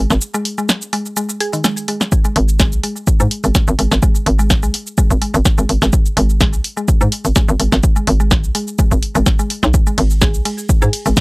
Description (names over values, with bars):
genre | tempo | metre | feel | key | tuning
minimal techno | 126 BPM | 4/4 | swing 54% on 16ths | G# minor | A4 = 439 Hz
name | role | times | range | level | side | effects
mallet-like synth pluck | riff | 0.0-11.1 s | D#3 to G#4 | -23 LUFS | equal | chorus, sidechain pumping, analog delay
hollow knocking FM bass | bass | 0.0-11.1 s | G#1 to G#2 | -14 LUFS | equal | sidechain pumping
punchy analog drum machine | drums | 0.1-11.2 s | hi-hat, ride cymbal, shaker, snare drum | -19 LUFS | equal | none
electronic kick drum | drums | 2.1-11.2 s | none | -14 LUFS | equal | none
room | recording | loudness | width
little or no reverb | dry, gritty hardware recording | -13 LUFS | side -27 dB against mid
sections
0.0-11.2 A section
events
break 0.2-2.1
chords
none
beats
| 0.22 0.69 1.17 1.65 | 2.12 2.60 3.07 3.55 | 4.03 4.50 4.98 5.45 | 5.93 6.41 6.88 7.36 | 7.83 8.31 8.79 9.26 | 9.74 10.22 10.69 11.17